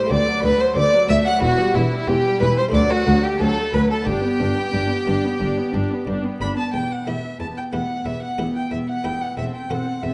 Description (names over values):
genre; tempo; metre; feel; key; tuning
classical, baroque-style concerto movement with solo episodes; 91 BPM; 4/4; straight; G major, E minor from 6.7 s; A4 = 437 Hz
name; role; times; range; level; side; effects
warm chamber violin section; melody; 0.0-10.1 s; G4 to F#6; -36 LUFS; equal; none
rich chamber violin section; second line; 0.0-10.1 s; E4 to B5; -30 LUFS; equal; none
buff-stop harpsichord; accompaniment; 0.0-10.1 s; D2 to A4; -33 LUFS; equal; none
dark chamber viola section; accompaniment; 0.0-10.1 s; E3 to D4; -29 LUFS; equal; none
rich violin; melody; 0.1-10.1 s; E4 to B5; -25 LUFS; equal; none
dark chamber cello section; bass; 0.1-10.1 s; D2 to G2; -27 LUFS; equal; none
rich chamber double bass section; bass; 0.1-10.1 s; E1 to D2; -29 LUFS; equal; none
room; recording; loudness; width
wet recital hall reverb, RT60 1.6 s; vinyl crackle, nothing above 10.8 kHz; -21 LUFS; mono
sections
0.0-6.7 A section; 6.7-10.1 B section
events
none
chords
0.1 D7; 1.4 Em; 2.7 D; 4.1 G; 6.7 Em; 9.4 F#m7b5/E